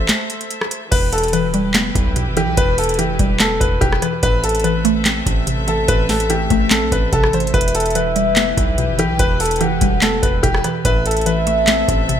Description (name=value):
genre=hip hop, trap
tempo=145 BPM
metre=4/4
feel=half-time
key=E minor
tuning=A4 = 440 Hz
part: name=warm symphonic string section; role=sustained chords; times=0.0-12.2 s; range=E3 to E5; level=-27 LUFS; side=left 1 dB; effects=none
part: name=hard-hitting 808-style bass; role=bass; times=0.0-12.2 s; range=E1 to B1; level=-23 LUFS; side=equal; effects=none
part: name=booming analog drum machine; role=drums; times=0.1-12.2 s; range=crash cymbal, handclaps, hi-hat, kick drum, rim click, snare drum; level=-18 LUFS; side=equal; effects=overdrive
part: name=clear grand piano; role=melody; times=0.9-12.2 s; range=G4 to C5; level=-20 LUFS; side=left 1 dB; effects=ping-pong delay
part: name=mallet-like synth pluck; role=accompaniment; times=0.9-12.2 s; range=E2 to C4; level=-21 LUFS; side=right 1 dB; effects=chorus, phaser
part: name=soft octave-layered synth lead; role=second line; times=7.5-12.2 s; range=E5 to G5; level=-21 LUFS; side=equal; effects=chorus, phaser, ping-pong delay
room=moderate lush hall reverb, RT60 1.6 s, digital ambience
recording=bright 1980s-style digital production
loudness=-14 LUFS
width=side -9 dB against mid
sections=0.9-12.2 A section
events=break 0.1-0.9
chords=0.0 Am; 0.9 Em; 4.2 Am; 7.5 Em; 10.8 Am